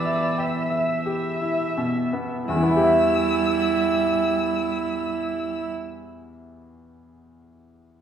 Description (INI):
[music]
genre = classical, slow romantic movement for piano quartet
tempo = 27-31 BPM (dotted quarters)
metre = 12/8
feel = rubato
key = E minor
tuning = A4 = 440 Hz
[part]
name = dark violin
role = melody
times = 0.0-5.7 s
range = E6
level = -31 LUFS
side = left 3 dB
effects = none
[part]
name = warm cello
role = second line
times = 0.0-5.7 s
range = E3 to E4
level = -25 LUFS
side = right 5 dB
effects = none
[part]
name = bright baby grand piano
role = accompaniment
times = 0.0-8.0 s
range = E2 to G5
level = -24 LUFS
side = left 1 dB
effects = none
[part]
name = warm viola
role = accompaniment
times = 0.0-5.7 s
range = G3 to E5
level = -30 LUFS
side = right 2 dB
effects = none
[sound]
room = wet recital hall reverb, RT60 1.4 s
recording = heard from further back in the room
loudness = -20 LUFS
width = side -8 dB against mid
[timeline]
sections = 0.0-2.5 A section; 2.5-8.0 B section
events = slowing down 0.0-2.5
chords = 0.0 Em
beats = 0.39 | 2.49 4.55 6.61